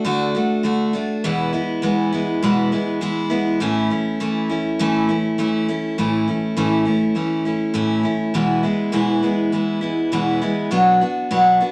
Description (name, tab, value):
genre	country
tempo	101 BPM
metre	4/4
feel	straight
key	A major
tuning	A4 = 438 Hz
part	picked steel-string acoustic guitar	solo	0.0-11.7 s	E2 to F#4	-20 LUFS	equal	none
room	wet small room reverb, RT60 0.5 s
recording	none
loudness	-20 LUFS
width	mono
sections	0.0-6.0 A section; 6.0-11.7 B section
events	none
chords	0.0 D; 1.2 E; 3.6 A; 8.3 E; 10.7 Bm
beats	0.07 0.66 | 1.25 1.84 2.43 3.02 | 3.61 4.20 4.79 5.38 | 5.97 6.57 7.16 7.75 | 8.34 8.94 9.53 10.12 | 10.71 11.31